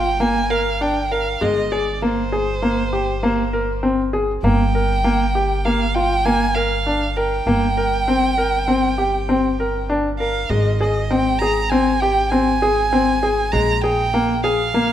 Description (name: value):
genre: contemporary instrumental, chamber music in an uneven meter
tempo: 99 BPM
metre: 5/4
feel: straight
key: unclear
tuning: A4 = 440 Hz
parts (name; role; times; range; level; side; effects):
- rich violin; melody; 0.0-14.9 s; C5 to Bb5; -22 LUFS; right 3 dB; none
- clear concert grand piano; arpeggios; 0.0-14.9 s; Ab3 to Bb4; -19 LUFS; left 2 dB; none
- upright bass; bass; 0.0-14.9 s; G1 to Bb1; -24 LUFS; equal; none
room: light reverb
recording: minimal, uncompressed stereo recording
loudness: -16 LUFS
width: side -11 dB against mid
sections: 0.0-10.5 A section; 10.5-14.9 B section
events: none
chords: 0.0 Bb7/G; 1.4 Abmaj9/G; 4.4 Gm7; 7.5 C5/G; 10.5 Abmaj7; 13.5 Bb5